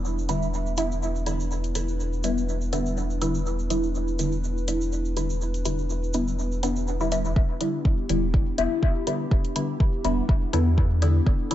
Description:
dub techno; 123 BPM; 4/4; swing 54% on 16ths; E minor; A4 = 440 Hz
dark analog pad; sustained chords; 0.0-11.5 s; B3 to B4; -34 LUFS; left 1 dB; chorus, sidechain pumping
warm sub bass; bass; 0.0-11.3 s; E1 to E2; -27 LUFS; equal; sidechain pumping
tube shaker; percussion; 0.0-7.3 s; -40 LUFS; right 4 dB
filtered dub chord stab; stabs; 0.3-11.5 s; D3 to E4; -27 LUFS; left 1 dB; phaser, sidechain pumping, dub echo
electronic hi-hat; drums; 0.3-11.5 s; -32 LUFS; left 3 dB
electronic kick drum; drums; 7.4-11.4 s; -22 LUFS; equal
light reverb; nothing above 7.8 kHz; -22 LUFS; side -12 dB against mid
0.0-7.4 A section; 7.4-11.5 B section
filter sweep on analog synth pad 0.0-7.4
0.0 Em7

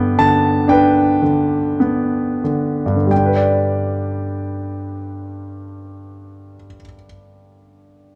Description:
classical, lyrical solo piano; 44-63 BPM; 4/4; rubato; G major; A4 = 441 Hz
clear concert grand piano; solo; 0.0-8.2 s; G2 to A5; -18 LUFS; equal
moderate recital hall reverb, RT60 1.6 s; dark, warm production; -17 LUFS; mono
0.0-3.1 A section; 3.1-8.2 B section
slowing down 0.0-3.1
0.0 G

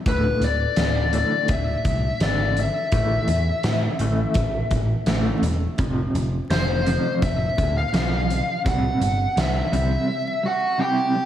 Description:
quiet-loud alternative rock; 84 BPM; 4/4; straight; A4 = 440 Hz
electric guitar through a small old amp; arpeggios; 0.0-11.3 s; D2 to C4; -26 LUFS; right 1 dB; tremolo, slapback echo
smooth overdriven lead guitar; melody; 0.1-11.3 s; F#4 to G5; -24 LUFS; left 2 dB; slapback echo, analog delay
overdriven picked electric bass; bass; 0.1-9.9 s; D1 to A2; -24 LUFS; equal
huge arena drum kit; drums; 0.1-9.9 s; hi-hat, kick drum, snare drum; -25 LUFS; equal; vintage 12-bit sampler grit
moderate lush hall reverb, RT60 1.9 s, small room ambience; big arena sound, vinyl crackle; -19 LUFS; side -11 dB against mid
0.0-11.3 A section
0.1 D5; 2.9 A5; 5.8 F5; 8.6 C

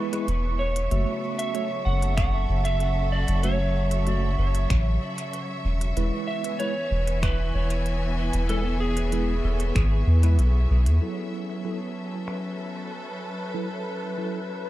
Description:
ambient dub; 95 BPM; 4/4; straight; F# minor; A4 = 439 Hz
electric slide guitar; melody; 0.0-10.0 s; G#4 to F#5; -32 LUFS; right 1 dB; dub echo
rich symphonic string section; sustained chords; 0.0-14.7 s; C#3 to G#5; -32 LUFS; equal
mellow tine electric piano; stabs; 0.0-14.4 s; F#3 to E5; -34 LUFS; right 1 dB; medium stereo tremolo, low-pass filter, dub echo
wind-like tuned noise texture; texture; 0.0-14.7 s; B4 to C#6; -38 LUFS; right 2 dB; built-in reverb
organic electronic drum kit; drums; 0.1-14.7 s; finger snaps, hi-hat; -37 LUFS; equal; low-pass filter on hats, low-pass filter on snare, low-pass filter on room, dub echo
soft dub sub bass; bass; 0.3-11.0 s; E1 to E2; -22 LUFS; equal
electronic kick drum; drums; 2.2-9.9 s; -26 LUFS; equal
little or no reverb; dark, warm production; -23 LUFS; side -15 dB against mid
0.0-11.0 A section; 11.0-14.7 B section
0.0 E; 0.9 F#m7; 6.0 E; 11.0 F#m7

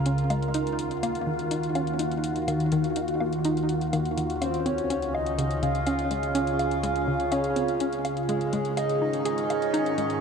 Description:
ambient, sequencer-driven space music; 124 BPM; 4/4; straight; Eb minor; A4 = 440 Hz
evolving wavetable pad; sustained chords; 0.0-10.2 s; Db2 to Bb4; -26 LUFS; equal; phaser, built-in reverb
hollow square pluck; riff; 0.1-10.1 s; Db3 to Ab4; -30 LUFS; equal; chorus, tape echo
electronic hi-hat and woodblock; percussion; 0.1-10.2 s; -38 LUFS; left 2 dB; tape echo
breathy flute-like synth lead; melody; 4.4-10.2 s; Ab4 to F5; -29 LUFS; equal; wide subtle chorus, tape echo
wet huge ambient reverb, RT60 8.1 s; in a vast, echoing space; -24 LUFS; side -6 dB against mid
0.0-10.2 A section
0.0 Db; 0.5 Ebmadd9; 4.4 Db; 8.3 Absus4

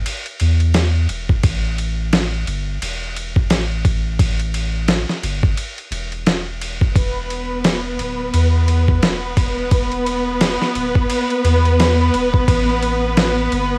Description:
trip hop; 87 BPM; 4/4; swing 59% on 16ths; A4 = 441 Hz
soft dub sub bass; bass; 0.0-13.8 s; D1 to E2; -22 LUFS; equal
dusty soul sampler-style drum kit; drums; 0.1-13.7 s; kick drum, ride cymbal, snare drum; -22 LUFS; equal; cassette tape
dark studio string section; sustained chords; 7.0-13.8 s; B3 to B4; -22 LUFS; equal; cassette tape, plate reverb
light reverb; home recording on cassette, vinyl crackle; -18 LUFS; mono
0.0-13.8 A section
0.0 N.C.; 1.4 A5; 7.0 E5; 12.5 A5

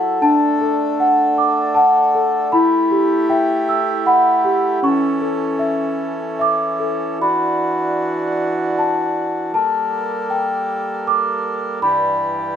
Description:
children's music; 78 BPM; 3/4; rubato; D major; A4 = 441 Hz
large celesta; melody; 0.0-12.6 s; C#4 to E6; -16 LUFS; left 1 dB
hand-pumped harmonium; sustained chords; 0.0-12.6 s; G2 to A4; -23 LUFS; right 2 dB
wet studio reverb, RT60 0.6 s; band playing live in one room; -15 LUFS; side -8 dB against mid
0.0-7.2 A section; 7.2-12.6 B section
0.2 D; 2.5 Emadd9; 4.8 A; 7.2 Dadd9; 9.5 Gmadd9; 11.8 Em7/G

